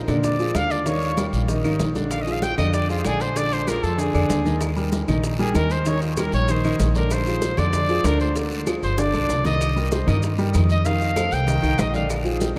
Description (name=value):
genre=Afro-Cuban jazz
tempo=192 BPM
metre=4/4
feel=straight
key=Bb mixolydian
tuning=A4 = 441 Hz
part: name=warm grand piano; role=accompaniment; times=0.0-12.6 s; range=D3 to Eb5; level=-26 LUFS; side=equal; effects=none
part: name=upright bass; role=bass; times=0.0-12.5 s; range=G1 to Bb2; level=-26 LUFS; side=equal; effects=none
part: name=claves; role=percussion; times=0.1-12.3 s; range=none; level=-44 LUFS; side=equal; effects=none
part: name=congas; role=percussion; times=0.1-12.6 s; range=none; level=-34 LUFS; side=equal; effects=none
part: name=guiro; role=percussion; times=0.1-12.6 s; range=none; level=-41 LUFS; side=equal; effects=none
part: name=maracas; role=percussion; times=0.1-12.6 s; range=none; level=-42 LUFS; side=equal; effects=none
part: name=warm trumpet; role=melody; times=0.2-12.1 s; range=F4 to G5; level=-28 LUFS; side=equal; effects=none
part: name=bongos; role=percussion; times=0.2-12.6 s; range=none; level=-36 LUFS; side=equal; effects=none
room=wet cathedral reverb, RT60 5.8 s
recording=in a vast, echoing space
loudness=-22 LUFS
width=mono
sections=0.0-12.6 A section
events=trumpet solo 0.0-12.6; drum fill 9.0-9.6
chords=0.0 Bb7; 0.9 Eb7; 2.1 Bb7; 4.6 Eb; 7.1 Bb9; 8.4 Ddim; 9.0 G; 9.6 Cm7; 10.9 F9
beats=0.24 0.55 | 0.86 1.17 1.49 1.80 | 2.11 2.42 2.74 3.05 | 3.36 3.67 3.99 4.30 | 4.61 4.92 5.24 5.55 | 5.86 6.17 6.49 6.80 | 7.11 7.42 7.74 8.05 | 8.36 8.67 8.98 9.30 | 9.61 9.92 10.23 10.54 | 10.86 11.17 11.48 11.79 | 12.10 12.41